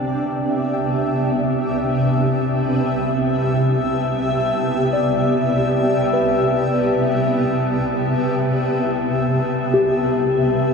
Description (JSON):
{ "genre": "ambient", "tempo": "free time", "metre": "none", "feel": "none", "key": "C major", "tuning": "A4 = 440 Hz", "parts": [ { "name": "granular cloud pad", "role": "sustained chords", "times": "0.0-10.7 s", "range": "C3 to E5", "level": "-18 LUFS", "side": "equal", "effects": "built-in reverb" }, { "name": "muted felt-like synth keys", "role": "arpeggios", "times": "0.0-10.7 s", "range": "G4 to G5", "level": "-24 LUFS", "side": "left 3 dB", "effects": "chorus, ping-pong delay" }, { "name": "analog drone", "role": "drone", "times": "0.0-10.7 s", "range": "C3", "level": "-31 LUFS", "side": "right 1 dB", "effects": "none" }, { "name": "glass harmonica", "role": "texture", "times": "0.0-10.7 s", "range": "A5", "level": "-30 LUFS", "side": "left 2 dB", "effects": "none" } ], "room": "wet cathedral reverb, RT60 6.4 s", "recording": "dark, warm production, lossy compression artefacts", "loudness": "-17 LUFS", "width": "side -5 dB against mid", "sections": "0.0-10.7 A section", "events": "none", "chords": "0.0 C69", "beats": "free time" }